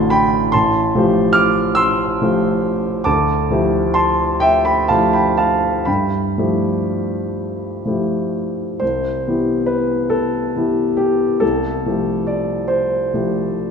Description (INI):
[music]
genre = classical, impressionist solo piano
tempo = 40-49 BPM (dotted quarters)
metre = 6/8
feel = rubato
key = C major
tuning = A4 = 440 Hz
[part]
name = warm grand piano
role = solo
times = 0.0-13.7 s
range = A1 to F6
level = -15 LUFS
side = equal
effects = none
[sound]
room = wet concert hall reverb, RT60 2.3 s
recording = minimal, uncompressed stereo recording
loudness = -15 LUFS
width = side -6 dB against mid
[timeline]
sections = 0.0-8.8 A section; 8.8-13.7 B section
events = none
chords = 0.0 D9/A; 0.5 Fadd9/A; 3.1 Dmadd9; 5.9 G13; 8.8 Cmaj7; 11.4 Fmaj9/C